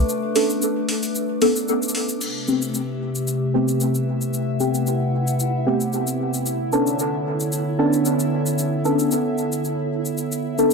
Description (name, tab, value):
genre	dub techno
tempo	113 BPM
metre	4/4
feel	swing 54% on 16ths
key	unclear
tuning	A4 = 441 Hz
part	warbly tape-like pad	sustained chords	0.0-10.7 s	C3 to F#5	-24 LUFS	left 1 dB	chorus, built-in reverb
part	deep mellow chord stab	stabs	0.0-10.7 s	A3 to A4	-22 LUFS	equal	chorus, phaser, dub echo
part	bubbling stepped-filter texture	texture	0.0-10.7 s	D4 to D6	-32 LUFS	right 3 dB	chorus, built-in reverb
part	deep house drum kit	drums	0.1-10.7 s	crash cymbal, hi-hat, shaker	-28 LUFS	left 2 dB	overdrive
room	moderate spring reverb, RT60 2.5 s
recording	none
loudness	-19 LUFS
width	side -4 dB against mid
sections	0.0-2.2 A section; 2.2-10.7 B section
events	filter sweep on synth stab 0.0-2.2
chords	0.0 Bm9; 2.2 Am9; 6.5 Bm9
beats	| 0.09 0.62 1.15 1.68 | 2.21 2.74 3.27 3.81 | 4.34 4.87 5.40 5.93 | 6.46 6.99 7.52 8.05 | 8.58 9.12 9.65 10.18 | 10.71